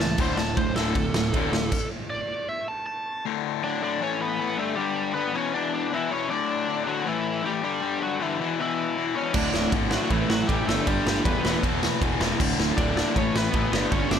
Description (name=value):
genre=punk rock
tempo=157 BPM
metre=4/4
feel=straight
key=unclear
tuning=A4 = 440 Hz
part: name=biting lead guitar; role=melody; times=0.0-14.2 s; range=E3 to A5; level=-28 LUFS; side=right 1 dB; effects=overdrive
part: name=distorted electric guitar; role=riff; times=0.0-1.7, 9.3-14.2 s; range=D2 to A3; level=-31 LUFS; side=right 12 dB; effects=distortion
part: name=fuzz guitar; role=riff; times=0.0-1.7, 9.3-14.2 s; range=D2 to A3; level=-32 LUFS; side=right 1 dB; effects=none
part: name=overdriven semi-hollow guitar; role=riff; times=0.0-14.2 s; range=D2 to A3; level=-28 LUFS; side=left 13 dB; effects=none
part: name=fuzz picked electric bass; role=bass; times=0.0-1.7, 9.3-14.2 s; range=D1 to E2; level=-30 LUFS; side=right 1 dB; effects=overdrive
part: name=raw garage drum kit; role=drums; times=0.2-1.8, 9.3-14.2 s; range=crash cymbal, kick drum, ride cymbal, snare drum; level=-26 LUFS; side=right 1 dB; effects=none
room=little or no reverb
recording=none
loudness=-23 LUFS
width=side -8 dB against mid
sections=0.0-3.2 A section; 3.2-14.2 B section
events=lead electric guitar solo 0.0-3.2; stop 1.7-3.2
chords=0.2 D5; 4.0 A; 4.6 G; 5.3 E5; 6.3 D; 7.1 A5; 7.6 G5; 8.4 E5; 9.3 D; 10.1 A5; 10.7 G; 11.4 E5; 12.4 D5; 13.2 A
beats=| 0.18 0.57 0.95 1.33 | 1.72 2.10 2.48 2.86 | 3.24 3.62 4.01 4.39 | 4.77 5.15 5.53 5.91 | 6.29 6.67 7.05 7.43 | 7.82 8.20 8.58 8.96 | 9.34 9.72 10.10 10.48 | 10.87 11.25 11.63 12.01 | 12.39 12.77 13.16 13.54 | 13.92